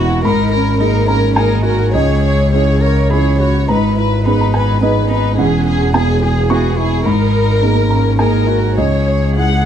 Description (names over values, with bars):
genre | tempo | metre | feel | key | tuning
neoclassical piano and strings | 106 BPM | 3/4 | rubato | G# minor | A4 = 440 Hz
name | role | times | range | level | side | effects
warm chamber violin section | melody | 0.0-9.6 s | F#4 to F#5 | -18 LUFS | left 1 dB | none
dark cello | second line | 0.0-9.7 s | B3 to A#4 | -22 LUFS | right 5 dB | none
felt-muted upright piano | accompaniment | 0.0-9.7 s | C#2 to C#6 | -17 LUFS | right 1 dB | none
clear double bass | bass | 0.0-9.7 s | E1 to C#2 | -15 LUFS | left 1 dB | none
room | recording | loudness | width
little or no reverb | dark, warm production | -11 LUFS | side -9 dB against mid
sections
0.0-9.7 A section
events
none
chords
0.2 G#madd9; 1.9 C#madd9; 3.7 G#madd9; 5.4 Eadd9; 7.1 G#madd9; 8.8 C#madd9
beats
| 0.24 0.80 1.36 | 1.94 2.52 3.10 | 3.68 4.25 4.81 | 5.37 5.94 6.50 | 7.05 7.62 8.19 | 8.77 9.36